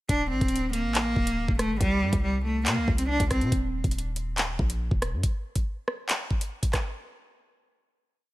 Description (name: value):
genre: hip hop, drill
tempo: 140 BPM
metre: 4/4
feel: half-time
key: unclear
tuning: A4 = 440 Hz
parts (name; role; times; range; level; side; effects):
- clear cello; melody; 0.1-3.5 s; G3 to D4; -27 LUFS; equal; none
- hard-hitting 808-style bass; bass; 0.1-5.2 s; D1 to C3; -29 LUFS; equal; none
- drill drum kit; drums; 0.1-6.8 s; handclaps, hi-hat, kick drum, rim click; -27 LUFS; equal; none
room: little or no reverb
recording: none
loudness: -24 LUFS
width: side -17 dB against mid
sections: 0.1-6.9 verse; 6.9-8.3 final hit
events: break 3.5-6.9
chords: 0.1 D5; 1.8 C5; 3.5 N.C.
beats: | 0.09 0.52 0.95 1.38 | 1.81 2.23 2.66 3.09 | 3.52 3.95 4.38 4.81 | 5.23 5.66 6.09 6.52